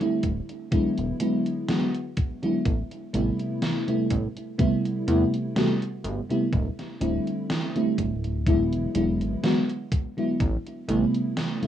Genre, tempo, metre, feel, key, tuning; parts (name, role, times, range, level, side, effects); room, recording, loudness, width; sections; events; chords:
vaporwave; 62 BPM; 4/4; swing 54% on 16ths; A dorian; A4 = 441 Hz
FM electric piano with soft pad layer; accompaniment; 0.0-11.7 s; C3 to F#4; -25 LUFS; equal; tremolo, lush chorus, analog delay
gated 80s digital drum machine; drums; 0.0-11.7 s; hi-hat, snare drum; -31 LUFS; right 1 dB; gated reverb, gated reverb snare, overdrive, vintage 12-bit sampler grit
chorused synth bass; bass; 0.2-11.1 s; D1 to E2; -28 LUFS; equal; tube saturation
electronic kick drum; drums; 0.2-10.6 s; -26 LUFS; equal; overdrive, vintage 12-bit sampler grit
moderate studio reverb, RT60 0.5 s; rough home demo mix, cassette tape; -23 LUFS; side -10 dB against mid
0.0-11.7 A section
0.0 D9sus4; 0.7 E9; 2.7 Am9; 6.5 D9sus4; 8.5 E9; 10.4 Am9